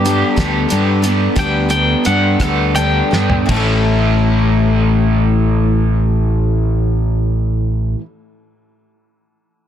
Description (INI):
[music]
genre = folk rock and heartland rock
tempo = 53-62 BPM (dotted quarters)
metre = 6/8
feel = straight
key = A mixolydian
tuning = A4 = 439 Hz
[part]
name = twangy electric guitar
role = melody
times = 0.0-3.5 s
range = G4 to G5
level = -20 LUFS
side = left 1 dB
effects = harmonic tremolo
[part]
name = picked twelve-string acoustic guitar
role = accompaniment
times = 0.0-8.1 s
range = A2 to A4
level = -20 LUFS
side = left 8 dB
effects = none
[part]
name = crunchy overdriven guitar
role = riff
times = 0.0-8.0 s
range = A2 to A4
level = -19 LUFS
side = right 2 dB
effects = harmonic tremolo
[part]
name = fingered electric bass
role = bass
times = 0.0-7.9 s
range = A1 to G2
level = -15 LUFS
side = equal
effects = none
[part]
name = cloth-damped thuddy drum kit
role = drums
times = 0.1-3.7 s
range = hi-hat, kick drum, ride cymbal, rim click, snare drum, toms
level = -21 LUFS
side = equal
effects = none
[sound]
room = studio ambience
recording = dense, heavily limited modern master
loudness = -12 LUFS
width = side -10 dB against mid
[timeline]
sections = 0.0-3.5 A section; 3.5-8.0 B section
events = slowing down 0.0-3.5; clean electric guitar solo 0.0-3.5; drum fill 3.1-3.5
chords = 0.0 Gadd9; 3.5 A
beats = 0.37 | 1.36 2.40 | 3.50 4.63 | 5.76 6.89